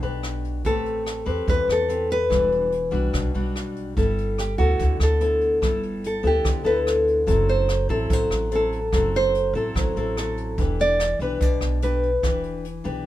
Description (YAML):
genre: bossa nova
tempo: 145 BPM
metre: 4/4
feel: straight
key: unclear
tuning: A4 = 443 Hz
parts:
  - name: nylon-string guitar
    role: melody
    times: 0.0-12.4 s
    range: F#4 to D5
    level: -24 LUFS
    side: equal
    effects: none
  - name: nylon-string guitar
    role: accompaniment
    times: 0.0-13.1 s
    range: B2 to B4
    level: -25 LUFS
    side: left 2 dB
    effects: none
  - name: upright bass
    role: bass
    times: 0.0-13.0 s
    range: E1 to E2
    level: -26 LUFS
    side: right 1 dB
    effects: none
  - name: jazz brush drum kit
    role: drums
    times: 0.0-12.9 s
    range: hi-hat, kick drum, rim click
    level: -27 LUFS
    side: equal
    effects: none
room: light reverb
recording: minimal, uncompressed stereo recording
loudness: -20 LUFS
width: side -14 dB against mid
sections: 0.0-4.0 A section; 4.0-13.1 B section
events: nylon-string guitar solo 4.0-13.1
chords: 0.0 Em7 (rootless); 0.7 Am9; 2.3 Em9; 4.0 G69; 7.3 F#m7b5; 10.6 Em7